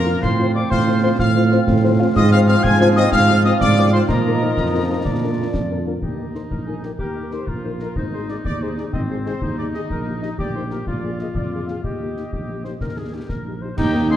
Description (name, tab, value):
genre	military-style march for wind band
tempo	124 BPM (dotted quarters)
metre	6/8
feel	straight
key	Eb major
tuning	A4 = 440 Hz
part	mellow trumpet section	melody	0.0-14.2 s	G4 to Ab5	-28 LUFS	equal	none
part	bright wooden piccolo	second line	0.0-5.5, 13.8-14.2 s	G5 to Ab6	-24 LUFS	left 3 dB	none
part	mellow woodwind section	second line	0.0-14.2 s	C4 to F5	-27 LUFS	equal	none
part	dark trombone section	sustained chords	0.0-5.8, 13.8-14.2 s	Eb3 to Eb4	-26 LUFS	right 1 dB	none
part	dark tuba	bass	0.0-14.2 s	Ab1 to Bb2	-20 LUFS	right 2 dB	none
part	mellow French horn section	accompaniment	0.1-14.2 s	Bb3 to C5	-26 LUFS	left 4 dB	none
part	concert snare drum, clash cymbals and concert bass drum	drums	0.2-14.2 s	none	-27 LUFS	left 1 dB	none
part	warm euphonium	second line	13.8-14.2 s	Eb4	-20 LUFS	right 3 dB	none
room	wet concert hall reverb, RT60 1.9 s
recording	dark, warm production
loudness	-17 LUFS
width	side -11 dB against mid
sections	0.0-6.0 A section; 6.0-13.8 B section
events	none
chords	0.2 F/A; 2.2 Fm/Ab; 4.1 Bbsus4; 5.1 Bb; 6.0 Eb; 8.0 Ab; 9.9 Eb/Bb; 10.9 Bb7; 11.8 Eb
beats	| 0.23 0.71 | 1.19 1.67 | 2.16 2.64 | 3.12 3.60 | 4.09 4.57 | 5.05 5.54 | 6.02 6.50 | 6.99 7.47 | 7.96 8.44 | 8.93 9.41 | 9.90 10.38 | 10.87 11.35 | 11.84 12.32 | 12.81 13.29 | 13.78